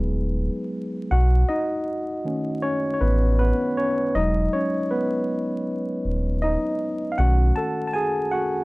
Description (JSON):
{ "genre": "lo-fi hip hop", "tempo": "79 BPM", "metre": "4/4", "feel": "swing 56% on 16ths", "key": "E major", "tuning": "A4 = 440 Hz", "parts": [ { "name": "tine electric piano", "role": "accompaniment", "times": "0.0-8.6 s", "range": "D#3 to A5", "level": "-23 LUFS", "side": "equal", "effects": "medium stereo tremolo, cassette tape, low-pass filter" }, { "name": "sub bass with octave", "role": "bass", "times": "0.0-7.5 s", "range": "D#1 to B1", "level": "-20 LUFS", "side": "equal", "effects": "transformer saturation" } ], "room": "light reverb", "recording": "dry, gritty hardware recording, vinyl crackle", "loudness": "-21 LUFS", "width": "side -23 dB against mid", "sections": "0.0-8.6 A section", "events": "tine electric piano solo 0.0-8.6", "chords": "0.0 Emaj7 (rootless); 1.1 B7; 4.1 Emaj7; 7.2 B7" }